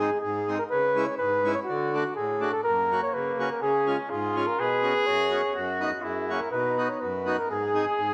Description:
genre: alpine folk, alpine dance band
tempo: 124 BPM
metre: 2/4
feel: straight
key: B major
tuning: A4 = 440 Hz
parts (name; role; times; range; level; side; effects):
- warm flugelhorn; melody; 0.0-8.1 s; F#4 to C#5; -29 LUFS; equal; none
- accordion; accompaniment; 0.0-8.1 s; F#2 to G#4; -33 LUFS; equal; none
- mellow trumpet; second line; 2.6-8.1 s; A#3 to G#4; -31 LUFS; equal; none
room: moderate recital hall reverb, RT60 1.5 s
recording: none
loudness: -26 LUFS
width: mono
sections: 0.0-8.1 A section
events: none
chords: 0.0 G#; 0.7 C#m; 1.7 D; 2.6 F#; 3.6 C#; 4.6 Bsus2; 5.5 B/F#; 6.0 F#add9; 6.5 B; 7.5 G#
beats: 0.22 | 0.70 1.18 | 1.67 2.15 | 2.64 3.13 | 3.62 4.10 | 4.58 5.06 | 5.55 6.03 | 6.52 7.01 | 7.49 7.98

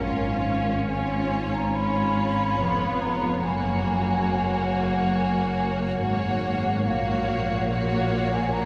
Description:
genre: classical, slow romantic movement for symphony orchestra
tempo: 70 BPM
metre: 4/4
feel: rubato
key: F# major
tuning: A4 = 440 Hz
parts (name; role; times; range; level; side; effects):
- rich studio violin section; melody; 0.0-8.7 s; C#5; -36 LUFS; equal; none
- mellow hollow silver concert flute; second line; 0.0-8.7 s; E#5 to B5; -31 LUFS; equal; none
- warm studio violin section; second line; 0.0-8.7 s; E#4 to F#4; -35 LUFS; equal; none
- bright studio viola section; accompaniment; 0.0-8.7 s; A#3 to C#4; -33 LUFS; equal; none
- rich studio cello section; bass; 0.0-8.7 s; E#2 to A#2; -31 LUFS; equal; none
- rich studio double bass section; bass; 0.0-8.7 s; E#1 to A#1; -31 LUFS; equal; none
room: wet cathedral reverb, RT60 5.8 s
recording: heard from further back in the room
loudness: -25 LUFS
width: mono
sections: 0.0-8.7 A section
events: none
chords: 0.0 C#7/G#; 3.4 F#; 6.9 F#/A#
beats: | 0.01 0.89 1.75 2.61 | 3.44 4.29 5.14 6.01 | 6.86 7.69 8.53

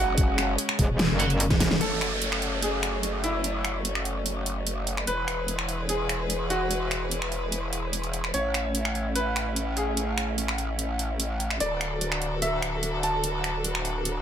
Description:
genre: heavy wobble dubstep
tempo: 147 BPM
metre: 4/4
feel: half-time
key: F# minor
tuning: A4 = 440 Hz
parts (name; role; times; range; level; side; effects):
- bright concert grand piano; melody; 0.0-13.6 s; E4 to A5; -31 LUFS; equal; tape echo
- bright chamber string section; sustained chords; 0.0-14.2 s; C#3 to B4; -33 LUFS; left 2 dB; sidechain pumping
- growl bass; bass; 0.0-14.2 s; D1 to A1; -30 LUFS; equal; chorus, overdrive
- dubstep drum kit; drums; 0.2-14.1 s; finger snaps, hi-hat, snare drum; -28 LUFS; right 1 dB; overdrive
- electronic kick drum; drums; 0.2-1.7 s; none; -24 LUFS; equal; overdrive
- metallic wobble bass; bass; 0.8-1.8 s; E1 to F#1; -25 LUFS; equal; distortion, chorus, overdrive
- heavy high-gain guitar; stabs; 1.2-1.3 s; F#4 to F#5; -33 LUFS; right 3 dB; distortion, tape echo
- downlifter; sound effects; 1.8-5.1 s; none; -34 LUFS; right 2 dB; none
room: light reverb, digital ambience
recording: none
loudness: -24 LUFS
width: side -9 dB against mid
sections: 0.0-1.8 A section; 1.8-14.2 B section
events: drop 0.0-1.8; drum fill 1.5-1.8; band accent 1.7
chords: 0.0 F#5; 1.8 F#m; 5.1 E; 8.3 A; 11.6 D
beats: | 0.18 0.58 0.99 1.40 | 1.81 2.22 2.62 3.03 | 3.44 3.85 4.26 4.67 | 5.07 5.48 5.89 6.30 | 6.71 7.11 7.52 7.93 | 8.34 8.75 9.15 9.56 | 9.97 10.38 10.79 11.20 | 11.60 12.01 12.42 12.83 | 13.24 13.64 14.05

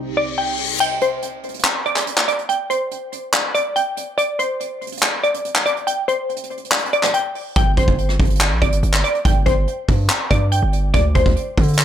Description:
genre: hip hop, trap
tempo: 142 BPM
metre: 4/4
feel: half-time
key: unclear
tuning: A4 = 440 Hz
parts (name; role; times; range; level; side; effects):
- glassy wavetable pluck; melody; 0.0-11.8 s; C5 to G5; -21 LUFS; equal; chorus, low-pass filter, tape echo
- warbly tape-like pad; sustained chords; 0.0-0.8 s; C2 to G4; -31 LUFS; right 3 dB; chorus, built-in reverb, phaser
- reverse cymbal; sound effects; 0.1-0.8 s; none; -23 LUFS; left 8 dB; none
- soft brush drum kit; drums; 0.8-11.8 s; crash cymbal, handclaps, hi-hat, kick drum, rim click; -19 LUFS; equal; none
- distorted 808-style bass; bass; 7.6-11.8 s; G1 to D3; -18 LUFS; equal; distortion
room: light reverb, small room ambience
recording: none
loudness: -16 LUFS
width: side -10 dB against mid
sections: 0.8-11.8 A section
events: reverse cymbal 0.1-0.8; kick muted 0.8-7.6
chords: 0.0 Cm; 0.8 N.C.; 7.6 G5; 10.9 Csus2/D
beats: 0.38 | 0.80 1.22 1.65 2.07 | 2.49 2.91 3.33 3.76 | 4.18 4.60 5.03 5.45 | 5.87 6.29 6.72 7.14 | 7.56 7.98 8.41 8.83 | 9.25 9.67 10.10 10.52 | 10.94 11.36 11.79

